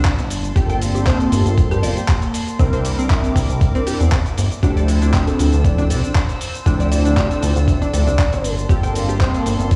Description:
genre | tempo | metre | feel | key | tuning
nu-disco, nu disco | 118 BPM | 4/4 | swing 53% on 16ths | D minor | A4 = 436 Hz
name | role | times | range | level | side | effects
warm studio string section | sustained chords | 0.0-9.8 s | Bb3 to E6 | -32 LUFS | equal | sidechain pumping
direct-recorded clean electric guitar | riff | 0.0-9.3 s | C4 to G5 | -30 LUFS | equal | ensemble chorus, tape echo
fat analog bass | bass | 0.0-9.8 s | D1 to G2 | -20 LUFS | equal | none
dusty soul sampler-style drum kit | drums | 0.0-9.8 s | handclaps, hi-hat, shaker | -30 LUFS | equal | studio reverb
electronic kick drum | drums | 0.0-9.8 s | none | -20 LUFS | equal | studio reverb
mellow synth brass | accompaniment | 0.5-9.8 s | F3 to D5 | -26 LUFS | equal | chorus, phaser, tape echo
soft octave-layered synth lead | melody | 4.6-8.5 s | G4 to D5 | -29 LUFS | equal | chorus, cassette tape, dub echo
room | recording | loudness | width
light reverb | played on a big sound system in a bare room, large studio reverb, small room ambience | -17 LUFS | mono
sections
0.0-9.8 A section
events
none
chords
0.3 Gm11; 2.6 C9; 4.6 Dm9; 8.4 Gm11

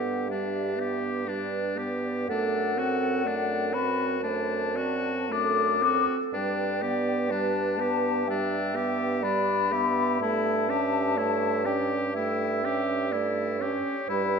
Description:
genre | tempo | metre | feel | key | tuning
classical, slow romantic movement for wind quintet | 62 BPM | 4/4 | rubato | G major | A4 = 440 Hz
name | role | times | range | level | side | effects
mellow hollow silver concert flute | melody | 0.0-14.4 s | D5 to D6 | -30 LUFS | left 9 dB | none
bright oboe | second line | 0.0-14.4 s | D4 to G4 | -32 LUFS | left 3 dB | none
mellow clarinet | accompaniment | 0.0-14.4 s | G4 to E5 | -32 LUFS | right 6 dB | none
warm French horn | accompaniment | 0.0-14.4 s | G3 to C#4 | -31 LUFS | right 1 dB | none
warm bassoon | bass | 0.0-14.4 s | F#2 to G2 | -31 LUFS | right 3 dB | none
room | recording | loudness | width
moderate concert hall reverb, RT60 2.0 s | dark, warm production | -24 LUFS | side -6 dB against mid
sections
0.0-14.4 A section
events
none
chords
0.0 G; 2.3 D7/F#; 6.3 G; 10.2 A7/G

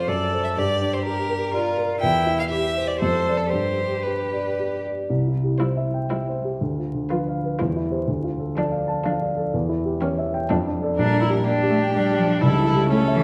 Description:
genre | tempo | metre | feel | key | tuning
quick classical-period movement for piano quartet | 123 BPM | 3/4 | rubato | C major | A4 = 440 Hz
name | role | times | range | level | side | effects
rich violin | melody | 0.0-13.2 s | G4 to G5 | -29 LUFS | equal | none
clear cello | second line | 0.0-13.2 s | E3 to A4 | -30 LUFS | equal | none
dark baby grand piano | accompaniment | 0.0-13.2 s | Bb1 to A5 | -25 LUFS | equal | none
rich viola | accompaniment | 5.6-13.2 s | C#4 to F4 | -29 LUFS | equal | none
room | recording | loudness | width
wet recital hall reverb, RT60 1.8 s | vinyl crackle | -23 LUFS | mono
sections
0.0-5.1 A section; 5.1-13.2 B section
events
none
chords
0.1 D7/F#; 0.6 Gm; 2.0 C/E; 3.0 Dm7/F; 3.5 G; 5.1 C; 6.6 Bdim/D; 7.6 C/E; 8.1 Dm; 9.5 C#dim/E; 10.5 Dm/F; 11.0 Gm/Bb; 12.4 A7/C#

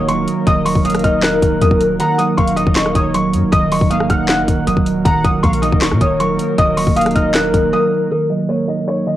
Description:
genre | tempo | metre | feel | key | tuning
hip hop, trap | 157 BPM | 4/4 | half-time | Eb minor | A4 = 437 Hz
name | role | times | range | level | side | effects
felt-muted upright piano | melody | 0.0-9.2 s | Bb4 to Gb6 | -20 LUFS | equal | low-pass filter, tape echo
warm velvety synth lead | second line | 0.0-8.1 s | Bb4 to Gb5 | -20 LUFS | left 2 dB | chorus, cassette tape, tape echo
mellow electric guitar | accompaniment | 0.0-9.2 s | Eb3 to Eb5 | -19 LUFS | right 5 dB | analog chorus, low-pass filter, cassette tape
warbly tape-like pad | sustained chords | 0.0-9.2 s | Gb3 to Bb4 | -22 LUFS | left 3 dB | chorus, built-in reverb, low-pass filter, cassette tape
warm 808-style bass | bass | 0.0-7.7 s | Db1 to Bb2 | -22 LUFS | left 1 dB | none
trap drum kit | drums | 0.1-7.6 s | handclaps, hi-hat, kick drum, rim click, snare drum | -17 LUFS | left 1 dB | cassette tape
room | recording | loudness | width
light reverb, digital ambience | home recording on cassette | -12 LUFS | side -13 dB against mid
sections
0.0-8.1 A section; 8.1-9.2 B section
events
break 2.0-2.4; silent gap 7.7-8.1; filter sweep 8.1-9.2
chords
0.0 Ebm

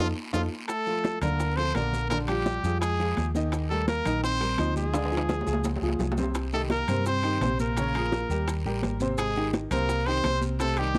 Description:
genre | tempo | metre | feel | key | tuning
Afro-Cuban jazz | 170 BPM | 4/4 | straight | Bb major | A4 = 440 Hz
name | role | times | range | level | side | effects
brilliant trumpet | melody | 0.0-11.0 s | F4 to C5 | -33 LUFS | equal | none
breathy trombone | second line | 0.0-11.0 s | F3 to C4 | -38 LUFS | equal | none
warm baby grand piano | accompaniment | 0.0-11.0 s | C3 to Eb5 | -34 LUFS | equal | none
hollow-body short-scale fingered electric bass | bass | 0.0-11.0 s | Ab1 to G2 | -32 LUFS | equal | none
bongos | percussion | 0.3-11.0 s | none | -39 LUFS | equal | none
congas | percussion | 0.3-11.0 s | none | -37 LUFS | equal | none
guiro | percussion | 0.3-11.0 s | none | -46 LUFS | equal | none
maracas | percussion | 0.3-11.0 s | none | -48 LUFS | equal | none
timbales | percussion | 0.3-10.9 s | none | -38 LUFS | equal | none
room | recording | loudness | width
light reverb | cassette tape | -27 LUFS | mono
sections
0.7-11.0 A section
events
drum fill 0.0-0.7, 4.9-6.4; band accent 0.0-0.7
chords
0.0 F7; 0.7 Bbmaj7; 2.1 Bb6; 3.5 Ebmaj13; 4.9 Ddim; 5.7 Db; 6.4 Cm7; 7.8 Bbm7; 8.5 Eb6; 9.2 Abmaj7

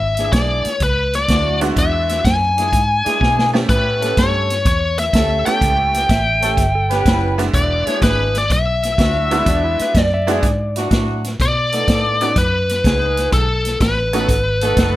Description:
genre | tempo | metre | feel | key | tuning
electric blues shuffle | 125 BPM | 4/4 | swing 68% on 8ths | E mixolydian | A4 = 441 Hz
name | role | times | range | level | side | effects
biting lead guitar | melody | 0.0-15.0 s | A4 to G#5 | -18 LUFS | left 2 dB | overdrive
vintage muted fingered electric bass | bass | 0.0-15.0 s | E1 to B2 | -21 LUFS | equal | none
dark horn section | stabs | 0.2-15.0 s | F#3 to B4 | -24 LUFS | right 2 dB | none
vintage drum kit | drums | 0.2-14.9 s | hi-hat, kick drum, snare drum | -19 LUFS | equal | none
tack piano | accompaniment | 1.6-14.3 s | G#3 to G4 | -23 LUFS | right 3 dB | none
electric slide guitar | second line | 6.1-10.4 s | D4 to E5 | -25 LUFS | right 3 dB | none
room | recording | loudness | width
light reverb | none | -14 LUFS | side -15 dB against mid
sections
0.0-15.0 A section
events
drum fill 3.2-3.7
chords
0.0 E7; 3.7 A7; 7.5 E7; 11.4 B7

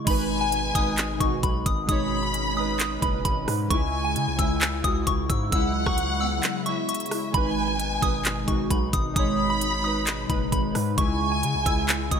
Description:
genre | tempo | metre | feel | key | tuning
hip hop, trap | 132 BPM | 4/4 | half-time | G# minor | A4 = 440 Hz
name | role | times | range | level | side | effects
soft synth bell | melody | 0.0-12.2 s | G#5 to E6 | -29 LUFS | equal | chorus, phaser
warbly lo-fi synth keys | accompaniment | 0.0-12.2 s | C#3 to C#5 | -30 LUFS | equal | chorus
hollow soft pad | sustained chords | 0.0-12.2 s | B2 to E4 | -32 LUFS | equal | ensemble chorus
warm studio violin section | second line | 0.1-12.2 s | E5 to B5 | -30 LUFS | left 1 dB | ping-pong delay
hard-hitting 808-style bass | bass | 0.1-12.2 s | F#1 to C#3 | -30 LUFS | equal | none
trap drum kit | drums | 0.1-12.2 s | crash cymbal, handclaps, hi-hat, kick drum, rim click | -26 LUFS | equal | none
room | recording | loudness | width
light reverb | bright 1980s-style digital production | -22 LUFS | side -7 dB against mid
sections
0.1-12.2 A section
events
break 6.4-7.3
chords
0.1 G#m; 3.7 C#m; 7.3 G#m; 11.0 C#m

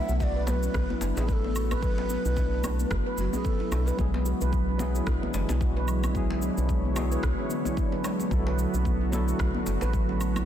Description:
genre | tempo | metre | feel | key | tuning
organic downtempo | 111 BPM | 4/4 | swing 57% on 16ths | B dorian | A4 = 440 Hz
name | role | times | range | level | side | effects
breathy mellow low ney | melody | 0.0-4.0 s | F#4 to E5 | -35 LUFS | left 1 dB | vintage 12-bit sampler grit, tape echo, shimmer reverb
handpan | arpeggios | 0.0-10.4 s | F#3 to B4 | -31 LUFS | equal | tape echo, shimmer reverb
woody FM bass | bass | 0.1-10.5 s | F#1 to B1 | -28 LUFS | equal | none
electronic shaker, rim click and woodblock | drums | 0.1-10.5 s | none | -39 LUFS | right 1 dB | soft clipping on snare
electronic kick drum | drums | 0.2-10.1 s | none | -30 LUFS | equal | none
djembe | percussion | 0.5-10.5 s | none | -38 LUFS | left 2 dB | none
tine electric piano | accompaniment | 4.0-10.5 s | F#3 to A4 | -34 LUFS | equal | medium tremolo, sidechain pumping, tape echo, shimmer reverb
warm analog pad | sustained chords | 4.0-10.5 s | D3 to C#5 | -36 LUFS | right 2 dB | lush chorus, sidechain pumping, shimmer reverb
room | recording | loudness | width
light reverb, studio ambience | dense, heavily limited modern master | -24 LUFS | side -10 dB against mid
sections
0.0-10.5 A section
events
none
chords
0.0 B7(no3); 4.0 E7; 8.3 Bm7

